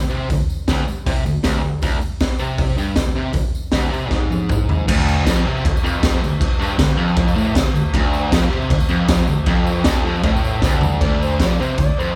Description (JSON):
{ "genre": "garage rock duo or trio", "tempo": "157 BPM", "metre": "4/4", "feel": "straight", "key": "D minor", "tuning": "A4 = 438 Hz", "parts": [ { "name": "fuzz guitar", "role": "riff", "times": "0.0-12.2 s", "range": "D2 to C3", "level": "-22 LUFS", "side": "equal", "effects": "distortion" }, { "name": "tambourine", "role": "percussion", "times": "0.1-12.1 s", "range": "none", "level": "-42 LUFS", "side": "equal", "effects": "none" }, { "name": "raw garage drum kit", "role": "drums", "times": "0.3-11.9 s", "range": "crash cymbal, hi-hat, kick drum, snare drum, toms", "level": "-20 LUFS", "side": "equal", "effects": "none" }, { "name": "overdriven harmonica", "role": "melody", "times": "11.0-12.2 s", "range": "C5 to D5", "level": "-27 LUFS", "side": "equal", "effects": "none" } ], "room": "light reverb", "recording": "band playing live in one room", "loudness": "-18 LUFS", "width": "mono", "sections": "0.0-4.9 A section; 4.9-11.0 B section; 11.0-12.2 C section", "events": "drum fill 4.1-4.9, 10.6-11.0; harmonica solo 11.0-12.2", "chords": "0.0 D7(no3); 4.9 Dm" }